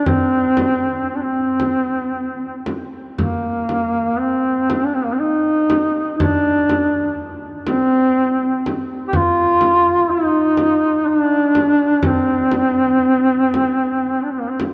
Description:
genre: caucasian folk, Caucasian lament.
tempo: 56-64 BPM.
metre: 3/4.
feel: rubato.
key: C minor.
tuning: A4 = 439 Hz.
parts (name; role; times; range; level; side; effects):
warm duduk; melody; 0.0-14.6 s; Bb3 to G4; -18 LUFS; equal; none.
frame drum; percussion; 0.1-14.7 s; none; -28 LUFS; equal; none.
room: wet cathedral reverb, RT60 5.2 s.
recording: worn, warbling old tape, cassette tape, warbly pitch drift.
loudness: -17 LUFS.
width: mono.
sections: 0.0-14.7 A section.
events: none.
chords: none.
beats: | 0.06 1.08 2.12 | 3.18 4.21 5.21 | 6.21 7.19 8.16 | 9.13 10.08 11.05 | 12.03 13.01 14.06.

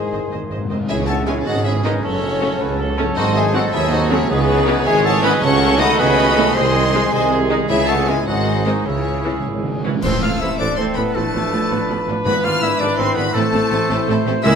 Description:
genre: classical, dramatic, fast romantic movement for symphony orchestra.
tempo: 101-110 BPM (dotted quarters).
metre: 6/8.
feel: straight.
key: C# minor, A minor from 10.0 s.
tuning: A4 = 440 Hz.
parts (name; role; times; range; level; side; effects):
warm symphonic violin section; melody; 0.0-14.6 s; G#4 to F6; -24 LUFS; left 4 dB; none.
bright clarinet; second line; 0.0-14.6 s; B3 to F5; -26 LUFS; left 2 dB; none.
mellow cor anglais; second line; 0.0-14.6 s; A3 to C#5; -28 LUFS; right 2 dB; none.
mellow hollow concert flute; second line; 0.0-14.6 s; G#4 to B5; -26 LUFS; left 1 dB; none.
warm symphonic violin section; second line; 0.0-14.6 s; C4 to F#5; -28 LUFS; left 1 dB; none.
dark bassoon; accompaniment; 0.0-0.7 s; D#3; -33 LUFS; right 1 dB; none.
warm French horn section; sustained chords; 0.0-14.6 s; B2 to F4; -27 LUFS; left 4 dB; none.
concert harp; arpeggios; 0.0-14.6 s; F#2 to C6; -29 LUFS; left 6 dB; none.
dark trumpet section; stabs; 0.0-14.6 s; F#4 to C5; -25 LUFS; right 1 dB; none.
warm symphonic cello section; bass; 0.0-14.5 s; C#2 to C#3; -25 LUFS; right 3 dB; none.
timpani; percussion; 0.0-0.9, 3.2-10.0, 12.3-12.8 s; G#2 to C#3; -28 LUFS; right 1 dB; none.
rich symphonic viola section; accompaniment; 0.1-14.6 s; E3 to D#5; -25 LUFS; right 1 dB; none.
warm trombone section; sustained chords; 0.1-14.6 s; D#3 to D4; -28 LUFS; right 4 dB; none.
mellow tuba; bass; 0.1-14.5 s; F#1 to D#2; -25 LUFS; right 4 dB; none.
rich studio double bass section; bass; 0.1-14.5 s; F#1 to D#2; -26 LUFS; right 4 dB; none.
tam-tam, cymbal swell, clash cymbals and concert bass drum; percussion; 0.9-2.4, 7.7-10.7 s; none; -32 LUFS; equal; none.
room: wet recital hall reverb, RT60 1.2 s.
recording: none.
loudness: -15 LUFS.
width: side -6 dB against mid.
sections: 0.9-10.0 A section; 10.0-14.6 B section.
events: timpani fill 0.0-0.9, 8.9-10.0; band accent 0.9-1.3, 10.0-10.4.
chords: 0.0 G#; 0.9 C#m; 2.0 F#m; 3.2 G#7b9; 4.3 C#m; 5.4 D#m7b5/C#; 6.6 G#/B#; 7.7 C#m; 8.3 G#7; 8.9 C#m; 10.0 Am; 11.2 Bm7b5/A; 12.3 E7/G#; 13.3 Am.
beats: 0.32 | 0.90 1.47 | 2.04 2.60 | 3.17 3.73 | 4.29 4.86 | 5.42 5.99 | 6.56 7.13 | 7.70 8.28 | 8.86 9.45 | 10.04 10.60 | 11.15 11.70 | 12.26 12.80 | 13.35 13.89 | 14.44.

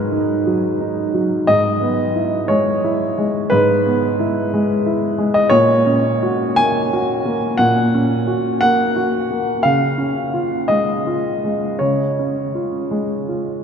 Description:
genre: neoclassical minimalist piano.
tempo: 52-61 BPM (dotted quarters).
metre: 6/8.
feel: rubato.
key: unclear.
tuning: A4 = 439 Hz.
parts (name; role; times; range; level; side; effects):
warm baby grand piano; solo; 0.0-13.6 s; G#2 to G#5; -15 LUFS; equal; none.
room: wet cathedral reverb, RT60 6.3 s.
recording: in a vast, echoing space, nothing above 10.9 kHz.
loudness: -15 LUFS.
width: side -7 dB against mid.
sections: 0.0-13.6 A section.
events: none.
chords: 0.0 G#m7; 1.5 E/G#; 5.5 F#/A#; 9.6 C#.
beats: 0.45 | 1.48 2.50 | 3.51 4.53 | 5.52 6.58 | 7.60 8.61 | 9.64 10.70 | 11.80 12.93.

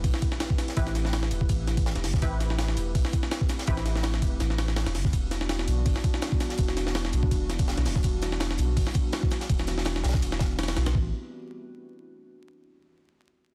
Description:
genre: drum and bass, jungle.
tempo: 165 BPM.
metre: 4/4.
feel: swing 54% on 16ths.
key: A minor.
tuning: A4 = 439 Hz.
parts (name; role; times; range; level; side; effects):
filtered dub chord stab; stabs; 0.0-5.1 s; C4 to B4; -41 LUFS; equal; analog chorus, dub echo.
soft dub sub bass; bass; 0.0-11.1 s; D1 to C2; -30 LUFS; equal; none.
crisp fusion drum kit; drums; 0.0-10.9 s; hi-hat, snare drum; -42 LUFS; equal; high-pass filter on hats, high-pass filter on snare, high-pass filter on room.
jungle sampler-style drum kit; drums; 0.0-11.0 s; hi-hat, kick drum, ride cymbal, snare drum; -29 LUFS; equal; none.
impact; sound effects; 0.0-0.8 s; none; -46 LUFS; equal; none.
warbly tape-like pad; sustained chords; 0.2-11.1 s; E3 to B4; -38 LUFS; equal; chorus, built-in reverb, vintage 12-bit sampler grit.
room: digital ambience.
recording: dense, heavily limited modern master, vinyl crackle.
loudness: -27 LUFS.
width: mono.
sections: 0.0-10.9 A section; 10.9-12.4 B section.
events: impact 0.0-0.8; filter sweep on sub bass 0.0-10.9.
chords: 0.0 Am7; 5.1 Em7; 10.9 Am7.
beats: 0.04 0.40 | 0.77 1.13 1.50 1.86 | 2.22 2.59 2.95 3.31 | 3.68 4.04 4.40 4.77 | 5.13 5.50 5.86 6.22 | 6.59 6.95 7.31 7.68 | 8.04 8.40 8.77 9.13 | 9.49 9.86 10.22 10.59 | 10.95.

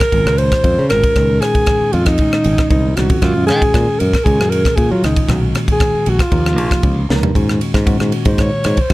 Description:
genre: electric jazz fusion.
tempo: 116 BPM.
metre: 4/4.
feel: straight.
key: Db major.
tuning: A4 = 440 Hz.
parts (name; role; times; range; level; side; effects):
warm alto saxophone; melody; 0.0-8.9 s; Eb4 to Db5; -17 LUFS; equal; none.
tight funk drum kit; drums; 0.0-8.9 s; kick drum, ride cymbal, rim click, snare drum, toms; -17 LUFS; equal; none.
bell-like tine electric piano; accompaniment; 0.1-8.9 s; Bb2 to Bb4; -20 LUFS; right 1 dB; lush chorus.
modern bright fingered electric bass; bass; 0.1-8.9 s; Ab1 to Gb3; -16 LUFS; equal; none.
room: light reverb.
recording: dark, warm production.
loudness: -12 LUFS.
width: side -18 dB against mid.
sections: 0.0-7.4 A section; 7.4-8.9 B section.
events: drum fill 7.1; alto saxophone solo 7.4-8.9.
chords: 0.0 Dbadd9; 3.2 Gbadd9; 5.3 Cbmaj9; 6.3 Eb9; 7.4 Ab9sus4.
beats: 0.13 0.64 | 1.16 1.68 2.19 2.71 | 3.23 3.74 4.26 4.77 | 5.29 5.81 6.32 6.84 | 7.35 7.87 8.39 8.90.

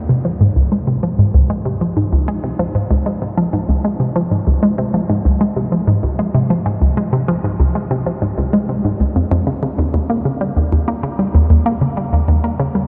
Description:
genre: ambient.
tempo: 96 BPM.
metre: 4/4.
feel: straight.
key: Db lydian.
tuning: A4 = 439 Hz.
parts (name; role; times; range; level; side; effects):
hollow square pluck; solo; 0.0-12.9 s; Db2 to Bb3; -16 LUFS; equal; chorus, phaser, tape echo.
room: wet huge ambient reverb, RT60 7.7 s.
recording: dark, warm production.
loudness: -17 LUFS.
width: mono.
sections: 0.0-12.9 A section.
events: none.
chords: none.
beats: 0.41 1.03 1.66 | 2.29 2.91 3.54 4.16 | 4.79 5.41 6.04 6.66 | 7.29 7.91 8.54 9.16 | 9.79 10.41 11.04 11.66 | 12.29.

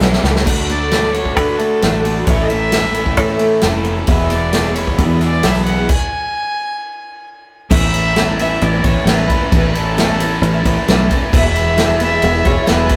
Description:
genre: folk rock and heartland rock.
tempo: 132 BPM.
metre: 4/4.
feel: straight.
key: A major.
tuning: A4 = 440 Hz.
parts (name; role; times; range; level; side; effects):
picked twelve-string acoustic guitar; accompaniment; 0.0-13.0 s; A2 to E5; -22 LUFS; equal; none.
crunchy overdriven guitar; riff; 0.0-13.0 s; E2 to F#4; -25 LUFS; equal; none.
fingered electric bass; bass; 0.0-12.9 s; E1 to D3; -20 LUFS; equal; none.
natural country drum kit; drums; 0.0-13.0 s; crash cymbal, kick drum, ride cymbal, snare drum; -20 LUFS; equal; none.
tambourine; percussion; 0.0-0.1, 4.3-5.7 s; none; -39 LUFS; equal; none.
warm fiddle; melody; 0.7-13.0 s; A4 to G#5; -24 LUFS; equal; digital delay.
room: moderate stone room reverb, RT60 1.3 s.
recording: rough rehearsal-room recording, warm saturation.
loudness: -15 LUFS.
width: mono.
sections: 0.5-7.7 A section; 7.7-13.0 B section.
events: drum fill 0.0-0.5; stop 5.9-7.7.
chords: 0.5 D; 2.3 A; 4.1 E; 7.7 Aadd9; 11.3 Eadd9.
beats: 0.01 | 0.46 0.92 1.37 1.82 | 2.28 2.73 3.19 3.64 | 4.09 4.54 5.00 5.45 | 5.91 6.36 6.81 7.26 | 7.72 8.17 8.62 9.07 | 9.53 9.98 10.43 10.88 | 11.33 11.79 12.24 12.69.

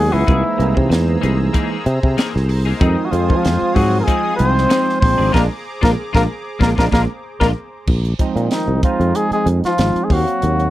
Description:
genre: electric jazz fusion.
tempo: 95 BPM.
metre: 4/4.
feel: swing 54% on 16ths.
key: unclear.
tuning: A4 = 442 Hz.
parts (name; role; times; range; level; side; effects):
trumpet with cup mute; melody; 0.0-10.7 s; Eb4 to C5; -19 LUFS; equal; slapback echo.
warm trombone; second line; 0.0-10.7 s; Eb3 to C4; -23 LUFS; left 6 dB; none.
barky tine electric piano; accompaniment; 0.0-10.7 s; E3 to F5; -22 LUFS; right 6 dB; analog chorus.
lush unison pad; sustained chords; 0.0-7.9 s; F4 to E6; -29 LUFS; equal; chorus.
sustaining fretless electric bass; bass; 0.0-10.7 s; Ab1 to F3; -17 LUFS; equal; none.
clean electric guitar; stabs; 0.1-7.5 s; E3 to G#4; -26 LUFS; left 8 dB; ensemble chorus.
crisp fusion drum kit; drums; 0.3-10.7 s; crash cymbal, hi-hat, kick drum, snare drum; -19 LUFS; equal; none.
room: little or no reverb.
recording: dry, close 1970s-style studio recording.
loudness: -14 LUFS.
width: side -15 dB against mid.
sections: 0.0-7.9 A section; 7.9-10.7 B section.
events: band accent 5.3-7.9; drum fill 6.6-7.9; tine electric piano fill 6.9-7.9.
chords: 0.3 C7alt; 2.8 Fm7; 5.0 Bb9; 7.9 Bb9sus4; 8.8 Fm7; 10.1 Ebm69.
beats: | 0.28 0.91 1.54 2.18 | 2.81 3.44 4.08 4.71 | 5.34 5.98 6.61 7.25 | 7.88 8.51 9.15 9.78 | 10.42.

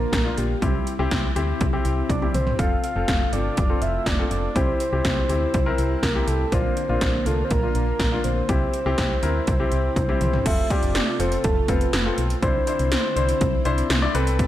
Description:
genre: synth-pop.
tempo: 122 BPM.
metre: 4/4.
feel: straight.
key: C mixolydian, C major from 10.5 s.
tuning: A4 = 443 Hz.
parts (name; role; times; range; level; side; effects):
soft octave-layered synth lead; melody; 0.0-13.6 s; G4 to F5; -27 LUFS; right 1 dB; chorus, slapback echo.
warm baby grand piano; accompaniment; 0.0-14.5 s; Bb3 to D5; -28 LUFS; left 4 dB; none.
ensemble organ-string; sustained chords; 0.0-14.5 s; C3 to B4; -31 LUFS; left 1 dB; ensemble chorus.
solid FM bass; bass; 0.0-14.5 s; F1 to D2; -25 LUFS; equal; none.
80s electronic pad drums; drums; 0.1-14.5 s; crash cymbal, hi-hat, kick drum, snare drum, toms; -24 LUFS; equal; gated reverb on snare and toms, overdrive.
riser; sound effects; 14.4-14.5 s; none; barely audible; none; none.
room: light reverb, digital ambience.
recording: none.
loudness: -20 LUFS.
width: side -13 dB against mid.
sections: 0.0-10.5 A section; 10.5-14.5 B section.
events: drum fill 2.1-2.6, 10.0-10.5.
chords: 0.0 Bb; 0.6 C; 2.6 F; 4.6 C; 6.5 Bb; 8.5 C; 10.5 F; 12.4 Cadd9.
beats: 0.13 | 0.62 1.11 1.61 2.10 | 2.59 3.08 3.57 4.07 | 4.56 5.05 5.54 6.03 | 6.52 7.02 7.51 8.00 | 8.49 8.98 9.47 9.97 | 10.46 10.95 11.44 11.93 | 12.43 12.92 13.41 13.90 | 14.39.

